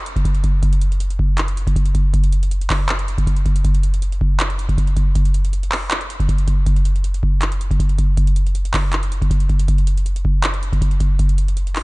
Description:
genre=hip hop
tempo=159 BPM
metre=4/4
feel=half-time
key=none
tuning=none
part: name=booming analog drum machine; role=drums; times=0.1-11.8 s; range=handclaps, hi-hat, kick drum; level=-16 LUFS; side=equal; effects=none
room=little or no reverb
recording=dark, warm production, nothing above 10.5 kHz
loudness=-16 LUFS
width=side -24 dB against mid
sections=0.0-11.8 A section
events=none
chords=none

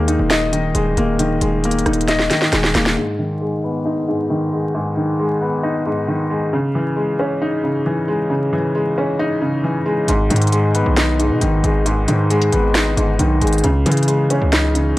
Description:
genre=hip hop, trap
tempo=135 BPM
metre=4/4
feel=half-time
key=G# minor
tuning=A4 = 439 Hz
part: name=felt-muted upright piano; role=accompaniment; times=0.0-15.0 s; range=G#2 to D#5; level=-17 LUFS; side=left 1 dB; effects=low-pass filter
part: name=distorted 808-style bass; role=bass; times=0.0-3.0, 10.1-14.9 s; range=D#1 to C#3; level=-18 LUFS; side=equal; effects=distortion
part: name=trap drum kit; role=drums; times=0.1-3.0, 10.1-14.9 s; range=hi-hat, rim click, snare drum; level=-20 LUFS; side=right 1 dB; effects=none
room=light reverb, digital ambience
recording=dry, gritty hardware recording, vinyl crackle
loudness=-15 LUFS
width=side -17 dB against mid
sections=0.0-3.0 A section; 3.0-10.1 B section; 10.1-15.0 A section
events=drum fill 2.1-3.0; filter sweep on felt piano 3.0-10.1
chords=0.0 D#sus4; 3.0 G#m; 6.5 C#madd9; 10.1 G#m; 13.6 C#madd9

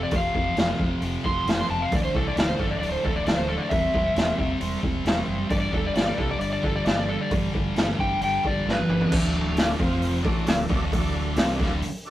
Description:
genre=blues rock power trio and southern rock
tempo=133 BPM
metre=4/4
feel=straight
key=unclear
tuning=A4 = 440 Hz
part: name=overdriven slide guitar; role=melody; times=0.0-9.1 s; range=A4 to C6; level=-27 LUFS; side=left 1 dB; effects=none
part: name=thick fuzz guitar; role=riff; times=0.0-11.8 s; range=D2 to C4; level=-28 LUFS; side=equal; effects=distortion
part: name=mellow fretless electric bass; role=bass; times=0.0-11.8 s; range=D1 to C2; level=-31 LUFS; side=equal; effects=none
part: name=raw garage drum kit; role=drums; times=0.1-11.9 s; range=crash cymbal, hi-hat, kick drum, snare drum, toms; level=-25 LUFS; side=equal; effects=none
part: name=tonewheel organ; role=sustained chords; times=9.1-12.1 s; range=C4 to F5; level=-34 LUFS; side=right 2 dB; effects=overdrive, chorus vibrato, slow rotary speaker
room=light reverb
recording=rough rehearsal-room recording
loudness=-22 LUFS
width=side -14 dB against mid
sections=0.0-9.1 A section; 9.1-12.1 B section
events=drum fill 8.7-9.1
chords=0.0 F5; 1.9 D5; 3.7 C/E; 5.5 G5; 9.1 D; 9.8 F5; 10.2 D

